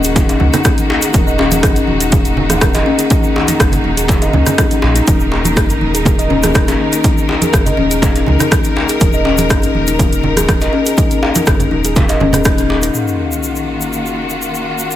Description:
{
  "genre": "afro house",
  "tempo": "122 BPM",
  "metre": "4/4",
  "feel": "straight",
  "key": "Eb minor",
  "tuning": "A4 = 440 Hz",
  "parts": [
    { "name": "warm studio string section", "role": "sustained chords", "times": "0.0-15.0 s", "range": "Eb3 to Bb4", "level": "-20 LUFS", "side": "left 1 dB", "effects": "sidechain pumping" },
    { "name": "kalimba", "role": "arpeggios", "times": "0.0-12.9 s", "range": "Db4 to Eb5", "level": "-17 LUFS", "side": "left 3 dB", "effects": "sidechain pumping, digital delay" },
    { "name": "warm sub bass", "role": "bass", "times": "0.0-12.9 s", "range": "Eb1 to Db2", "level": "-19 LUFS", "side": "equal", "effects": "tube saturation, sidechain pumping" },
    { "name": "afro-pop drum kit", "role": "drums", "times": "0.0-12.9 s", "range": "hi-hat, rim click", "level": "-20 LUFS", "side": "right 1 dB", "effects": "overdrive, studio reverb" },
    { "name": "egg shaker", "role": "percussion", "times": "0.0-15.0 s", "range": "none", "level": "-25 LUFS", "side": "left 3 dB", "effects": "none" },
    { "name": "electronic kick drum", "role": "drums", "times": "0.2-12.6 s", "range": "none", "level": "-15 LUFS", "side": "equal", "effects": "overdrive, studio reverb" },
    { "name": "congas", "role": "percussion", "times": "0.2-12.6 s", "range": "none", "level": "-21 LUFS", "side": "right 4 dB", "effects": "none" },
    { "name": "djembe", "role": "percussion", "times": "0.2-12.8 s", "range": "none", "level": "-23 LUFS", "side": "left 1 dB", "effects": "none" },
    { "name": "sub drop", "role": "sound effects", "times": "12.9-14.9 s", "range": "none", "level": "-25 LUFS", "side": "equal", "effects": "none" }
  ],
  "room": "light reverb, small room ambience",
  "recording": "none",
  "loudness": "-11 LUFS",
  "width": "side -12 dB against mid",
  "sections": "0.0-12.9 A section; 12.9-15.0 B section",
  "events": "band accent 12.5; impact 12.9-14.9",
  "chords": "0.0 Ebm; 12.9 Ebmadd9",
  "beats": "0.16 0.65 | 1.14 1.63 2.12 2.62 | 3.11 3.60 4.09 4.58 | 5.08 5.57 6.06 6.55 | 7.04 7.54 8.03 8.52 | 9.01 9.50 9.99 10.49 | 10.98 11.47 11.96 12.45 | 12.95 13.44 13.93 14.42 | 14.91"
}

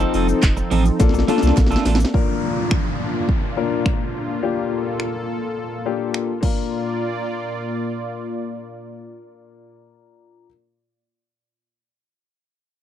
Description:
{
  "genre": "dance-pop",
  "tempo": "105 BPM",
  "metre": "4/4",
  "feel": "straight",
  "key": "Bb major",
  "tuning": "A4 = 439 Hz",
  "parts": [
    { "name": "warm grand piano", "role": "accompaniment", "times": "0.0-10.5 s", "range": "Bb3 to Bb4", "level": "-24 LUFS", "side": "left 10 dB", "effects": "sidechain pumping" },
    { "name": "warm analog pad", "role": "sustained chords", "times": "0.0-9.8 s", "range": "Bb2 to D5", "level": "-26 LUFS", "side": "equal", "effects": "chorus, sidechain pumping" },
    { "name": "electric guitar at the edge of break-up", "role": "riff", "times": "0.0-2.0 s", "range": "F3 to A4", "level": "-23 LUFS", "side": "right 7 dB", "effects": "lush chorus" },
    { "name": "warm sub bass", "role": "bass", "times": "0.0-2.0 s", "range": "F1 to C2", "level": "-19 LUFS", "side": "equal", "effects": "sidechain pumping" },
    { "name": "house drum kit", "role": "drums", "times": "0.0-6.6 s", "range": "crash cymbal, finger snaps, handclaps, hi-hat, kick drum, shaker, snare drum", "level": "-19 LUFS", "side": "right 1 dB", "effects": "none" },
    { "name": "group handclap", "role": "percussion", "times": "0.4-1.7 s", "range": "none", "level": "-37 LUFS", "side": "right 21 dB", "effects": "none" },
    { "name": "downlifter", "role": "sound effects", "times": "2.1-6.7 s", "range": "none", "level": "-30 LUFS", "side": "equal", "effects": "none" }
  ],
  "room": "little or no reverb",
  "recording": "dry, close 1970s-style studio recording",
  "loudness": "-18 LUFS",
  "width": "side -10 dB against mid",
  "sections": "0.0-2.1 A section; 2.1-6.7 B section; 6.7-9.0 C section",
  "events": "drum fill 1.0-2.1",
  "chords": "0.0 F7; 1.0 Bbmaj7; 2.1 Bb; 4.4 Gm7/Bb; 6.4 Bb",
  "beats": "0.43 1.00 1.57 | 2.14 2.71 3.29 3.86 | 4.43 5.00 5.57 6.14 | 6.71 7.29 7.86 8.43"
}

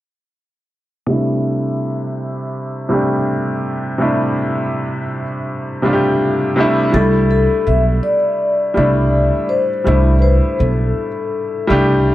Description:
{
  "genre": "lo-fi hip hop",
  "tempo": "82 BPM",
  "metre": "4/4",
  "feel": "swing 64% on 16ths",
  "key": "C major",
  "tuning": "A4 = 441 Hz",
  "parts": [
    { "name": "clear upright piano", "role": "accompaniment", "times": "1.1-12.1 s", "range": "C3 to G4", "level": "-17 LUFS", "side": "equal", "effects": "cassette tape, low-pass filter" },
    { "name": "vibraphone with soft mallets", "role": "melody", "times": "6.9-11.6 s", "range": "A4 to E5", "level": "-18 LUFS", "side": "left 3 dB", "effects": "analog delay" },
    { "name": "upright bass", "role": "bass", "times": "6.9-12.1 s", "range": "B1 to C2", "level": "-14 LUFS", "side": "right 1 dB", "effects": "none" }
  ],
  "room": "light reverb, studio ambience",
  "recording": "none",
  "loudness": "-14 LUFS",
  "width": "side -14 dB against mid",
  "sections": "1.1-6.9 A section; 6.9-12.1 B section",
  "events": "filter sweep on upright piano 1.1-6.9",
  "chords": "1.1 C69",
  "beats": "| 1.07 1.81 2.54 3.27 | 4.00 4.73 5.46 6.20 | 6.93 7.66 8.39 9.12 | 9.85 10.59 11.32 12.05"
}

